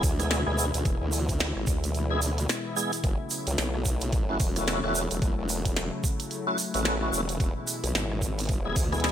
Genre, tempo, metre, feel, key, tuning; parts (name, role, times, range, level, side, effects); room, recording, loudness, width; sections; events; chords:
glitch hop; 110 BPM; 4/4; swing 60% on 16ths; F# minor; A4 = 440 Hz
warm analog pad; sustained chords; 0.0-9.1 s; B2 to E4; -34 LUFS; left 2 dB; chorus, sidechain pumping
tonewheel organ; stabs; 0.0-9.1 s; G#3 to G#4; -31 LUFS; equal; overdrive, chorus vibrato, slow rotary speaker, sidechain pumping, digital delay
formant-sweep wobble bass; bass; 0.0-9.1 s; E1 to D2; -29 LUFS; equal; chorus, tube saturation
electronic kick drum; drums; 0.0-8.9 s; -28 LUFS; equal; overdrive, studio reverb
glitchy drum kit; drums; 0.0-9.1 s; hi-hat, rim click, snare drum; -32 LUFS; equal; studio reverb
egg shaker; percussion; 0.0-9.1 s; -35 LUFS; right 5 dB
light reverb, digital ambience; bright 1980s-style digital production; -25 LUFS; side -10 dB against mid
0.0-9.1 A section
0.0 E; 3.0 F#m7; 7.4 E